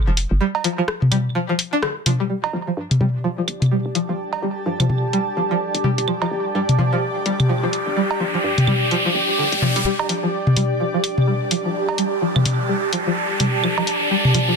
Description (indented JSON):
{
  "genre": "minimal techno",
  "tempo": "127 BPM",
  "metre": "4/4",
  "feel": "swing 59% on 16ths",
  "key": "unclear",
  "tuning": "A4 = 439 Hz",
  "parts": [
    { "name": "string-like resonator pluck", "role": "riff", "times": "0.1-14.5 s", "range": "D3 to D4", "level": "-23 LUFS", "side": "equal", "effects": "wide subtle chorus, ping-pong delay" },
    { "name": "hollow knocking FM bass", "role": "bass", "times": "0.1-9.8 s", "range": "F1 to G2", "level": "-26 LUFS", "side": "equal", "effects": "high-pass filter" },
    { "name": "house drum kit", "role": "drums", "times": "0.2-14.5 s", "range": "hi-hat, rim click", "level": "-23 LUFS", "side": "left 2 dB", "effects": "soft clipping on snare" },
    { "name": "electronic cowbell, toms and claves", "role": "percussion", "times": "0.5-14.5 s", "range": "none", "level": "-20 LUFS", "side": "equal", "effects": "tape echo" },
    { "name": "granular cloud pad", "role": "texture", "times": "3.4-14.6 s", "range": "G4 to A5", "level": "-23 LUFS", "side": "right 1 dB", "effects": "built-in reverb" },
    { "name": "riser", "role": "sound effects", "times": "7.0-14.6 s", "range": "none", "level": "-24 LUFS", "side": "equal", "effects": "none" }
  ],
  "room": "moderate studio ambience, RT60 0.5 s",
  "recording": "dense, heavily limited modern master",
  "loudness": "-18 LUFS",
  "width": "side -5 dB against mid",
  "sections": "0.0-2.3 A section; 2.3-9.9 B section; 9.9-14.6 C section",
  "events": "band accent 1.8; filter sweep on synth pluck 2.3-9.9; riser 7.0-9.9, 9.9-14.6; build-up 9.9-14.6",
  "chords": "0.0 G5"
}